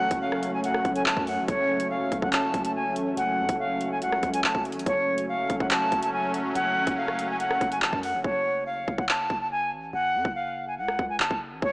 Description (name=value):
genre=hip hop, drill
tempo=142 BPM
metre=4/4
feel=half-time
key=F# harmonic minor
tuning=A4 = 440 Hz
part: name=reedy silver concert flute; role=melody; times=0.0-11.7 s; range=C#5 to A5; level=-26 LUFS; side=equal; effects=analog delay
part: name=sweeping resonant pad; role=sustained chords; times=0.0-8.2 s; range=F#3 to C#4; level=-30 LUFS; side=equal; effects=chorus
part: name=long sustained 808-style bass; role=bass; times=0.0-11.7 s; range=E#1 to F#2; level=-39 LUFS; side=equal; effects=none
part: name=drill drum kit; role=drums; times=0.1-11.7 s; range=handclaps, hi-hat, kick drum, rim click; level=-28 LUFS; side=equal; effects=none
room=wet plate reverb, RT60 1.8 s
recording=dreamy mix soaked in reverb, small speaker sound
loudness=-24 LUFS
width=side -25 dB against mid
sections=0.0-8.2 A section; 8.2-11.7 B section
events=hi-hats muted 8.2-11.7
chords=0.0 F#m; 8.2 N.C.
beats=0.21 0.64 1.06 | 1.48 1.91 2.33 2.75 | 3.17 3.60 4.02 4.44 | 4.86 5.29 5.71 6.13 | 6.55 6.98 7.40 7.82 | 8.24 8.67 9.09 9.51 | 9.93 10.36 10.78 11.20 | 11.62